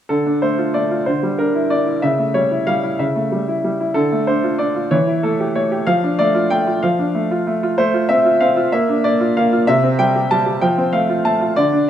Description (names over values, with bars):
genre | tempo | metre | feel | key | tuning
classical-period piano sonatina | 63 BPM (dotted quarters) | 6/8 | rubato | D minor, F major from 7.8 s | A4 = 440 Hz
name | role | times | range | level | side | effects
bright baby grand piano | solo | 0.1-11.9 s | C3 to A5 | -15 LUFS | equal | none
room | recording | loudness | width
moderate recital hall reverb, RT60 1.3 s | dark, warm production | -15 LUFS | side -10 dB against mid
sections
0.1-11.9 A section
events
none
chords
0.1 Dm; 1.1 C9/D; 2.0 A7/C#; 4.0 Dm; 4.9 A5/E; 5.9 Dm/F; 7.8 F/A; 8.7 Bb; 9.7 C5; 10.6 F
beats
| 0.09 1.07 | 2.04 3.00 | 3.96 4.92 | 5.88 6.83 | 7.78 8.72 | 9.67 10.62 | 11.57